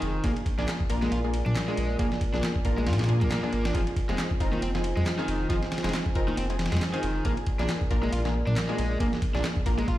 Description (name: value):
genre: breakbeat, breaks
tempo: 137 BPM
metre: 4/4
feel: swing 57% on 16ths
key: unclear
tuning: A4 = 440 Hz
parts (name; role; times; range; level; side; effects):
- dark analog pad; sustained chords; 0.0-10.0 s; F4 to Ab5; -36 LUFS; right 1 dB; chorus, vintage 12-bit sampler grit, sidechain pumping
- overdriven electric guitar; riff; 0.0-9.9 s; Eb3 to F4; -33 LUFS; equal; dub echo
- orchestra-hit-like synth stab; stabs; 0.0-9.8 s; Bb3 to Bb4; -33 LUFS; left 1 dB; built-in reverb, dub echo
- saturated sub bass; bass; 0.0-10.0 s; F1 to Bb2; -28 LUFS; equal; none
- dusty soul sampler-style drum kit; drums; 0.0-10.0 s; kick drum, ride cymbal, snare drum; -29 LUFS; equal; none
- congas and bongos; percussion; 0.6-9.9 s; none; -36 LUFS; left 2 dB; none
- electronic handclaps; drums; 0.7-9.5 s; none; -38 LUFS; equal; none
room: moderate small room ambience, RT60 0.5 s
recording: played on a big sound system in a bare room, stone room reverb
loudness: -24 LUFS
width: side -14 dB against mid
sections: 0.0-10.0 A section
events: none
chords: 0.2 Bb7; 3.7 Fm7; 7.2 Bb7